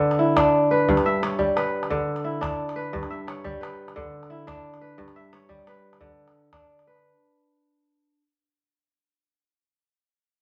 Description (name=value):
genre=west african traditional, West African string and xylophone music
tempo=117 BPM (dotted quarters)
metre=12/8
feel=straight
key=G lydian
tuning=A4 = 440 Hz
part: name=kora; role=arpeggios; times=0.0-8.2 s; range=G2 to E5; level=-25 LUFS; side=equal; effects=none
part: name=calabash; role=percussion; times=0.1-7.0 s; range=none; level=-34 LUFS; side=equal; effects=none
room=wet studio reverb, RT60 0.7 s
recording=none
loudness=-23 LUFS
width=mono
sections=0.0-7.1 A section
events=fade-out 0.0-7.1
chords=0.0 Dsus2; 0.9 G; 1.9 Dsus2; 2.9 G; 4.0 Dsus2; 5.0 G; 6.0 Bm/D